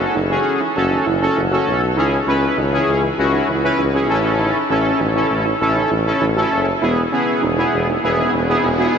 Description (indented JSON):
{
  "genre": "synth-pop",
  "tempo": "99 BPM",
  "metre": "4/4",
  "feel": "straight",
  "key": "unclear",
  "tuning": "A4 = 438 Hz",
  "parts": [
    { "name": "analog synth brass", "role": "accompaniment", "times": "0.0-9.0 s", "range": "B3 to B4", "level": "-17 LUFS", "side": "equal", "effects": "chorus" },
    { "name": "warbly dusty pluck", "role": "arpeggios", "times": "0.0-9.0 s", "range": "C#4 to F#4", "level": "-25 LUFS", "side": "right 5 dB", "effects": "chorus, analog delay" },
    { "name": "warm tuba", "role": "bass", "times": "0.0-9.0 s", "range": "E1 to C#2", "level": "-21 LUFS", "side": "equal", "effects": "none" },
    { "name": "riser", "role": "sound effects", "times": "7.4-9.0 s", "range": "none", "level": "-26 LUFS", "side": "left 1 dB", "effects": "none" }
  ],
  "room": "wet huge ambient reverb, RT60 6.9 s",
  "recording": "dreamy mix soaked in reverb, nothing above 7.9 kHz",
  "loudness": "-15 LUFS",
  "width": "side -7 dB against mid",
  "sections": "0.0-9.0 A section",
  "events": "riser 7.4-9.0",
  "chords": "0.0 F#madd9; 2.0 C#madd9; 4.1 A6; 6.8 E"
}